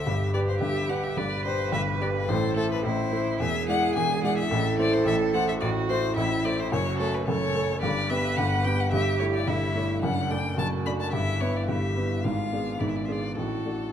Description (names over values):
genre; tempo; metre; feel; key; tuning
quick classical-period movement for piano trio; 108 BPM; 4/4; straight; D major from 6.7 s; A4 = 440 Hz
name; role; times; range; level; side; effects
rich violin; melody; 0.0-13.9 s; A4 to B5; -30 LUFS; left 6 dB; none
rich cello; second line; 0.0-13.9 s; D4 to B4; -31 LUFS; right 6 dB; none
warm baby grand piano; accompaniment; 0.0-13.9 s; E1 to D5; -26 LUFS; equal; none
room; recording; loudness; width
wet recital hall reverb, RT60 1.7 s; dark, warm production; -24 LUFS; side -9 dB against mid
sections
0.0-13.9 A section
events
none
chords
0.1 G; 2.3 Am; 3.4 E7; 4.5 Am; 6.7 F#m; 7.8 G; 8.9 A7/G; 10.0 D/F#; 11.1 Em/G; 12.2 G#dim7; 13.4 D/A